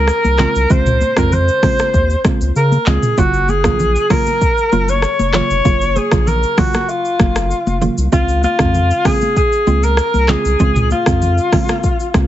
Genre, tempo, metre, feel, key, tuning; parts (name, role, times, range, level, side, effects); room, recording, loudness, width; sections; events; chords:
afrobeats; 97 BPM; 4/4; straight; Db major; A4 = 440 Hz
warm alto saxophone; melody; 0.0-12.1 s; F4 to Db5; -16 LUFS; left 1 dB; plate reverb, ping-pong delay
saturated sub bass; bass; 0.0-12.3 s; F1 to Db3; -16 LUFS; equal
afro-pop drum kit; drums; 0.1-12.3 s; handclaps, hi-hat, kick drum, rim click, shaker, toms; -17 LUFS; equal
congas; percussion; 0.2-12.3 s; -23 LUFS; left 3 dB
mallet-like synth pluck; accompaniment; 0.4-12.3 s; Db3 to F4; -20 LUFS; right 4 dB; chorus, plate reverb
light reverb; heavily compressed radio sound, multiband compression, nothing above 7.9 kHz; -12 LUFS; side -12 dB against mid
0.0-12.3 A section
0.0 Dbmaj7; 3.2 Gbmaj7; 8.1 Dbmaj7